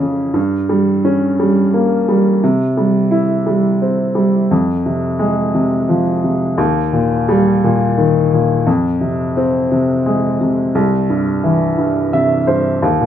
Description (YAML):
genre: folk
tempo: 58 BPM (dotted quarters)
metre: 6/8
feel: straight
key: F minor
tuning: A4 = 439 Hz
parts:
  - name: clear upright piano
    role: solo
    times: 0.0-13.1 s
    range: C2 to E5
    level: -13 LUFS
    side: equal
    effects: none
room: moderate studio reverb, RT60 0.5 s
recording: band playing live in one room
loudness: -13 LUFS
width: side -10 dB against mid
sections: 0.0-12.8 A section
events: none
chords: 0.4 Gdim; 2.4 C; 4.5 Fm; 6.6 Eb; 8.7 Fm; 10.7 C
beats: | 0.35 1.39 | 2.43 3.47 | 4.51 5.55 | 6.59 7.63 | 8.67 9.71 | 10.75 11.79 | 12.83